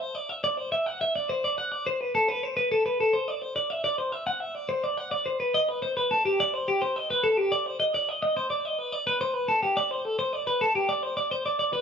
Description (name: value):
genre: rock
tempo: 71 BPM (dotted quarters)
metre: 6/8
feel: straight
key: unclear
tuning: A4 = 440 Hz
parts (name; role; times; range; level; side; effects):
- twelve-string electric guitar; solo; 0.0-11.8 s; G4 to F#5; -24 LUFS; equal; none
room: moderate large studio reverb, RT60 1.2 s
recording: band playing live in one room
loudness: -24 LUFS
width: side -7 dB against mid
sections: 0.0-5.5 A section; 5.5-11.8 B section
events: none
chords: none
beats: | 0.44 1.30 | 2.15 3.00 | 3.85 4.70 | 5.54 6.39 | 7.24 8.08 | 8.92 9.77 | 10.61 11.45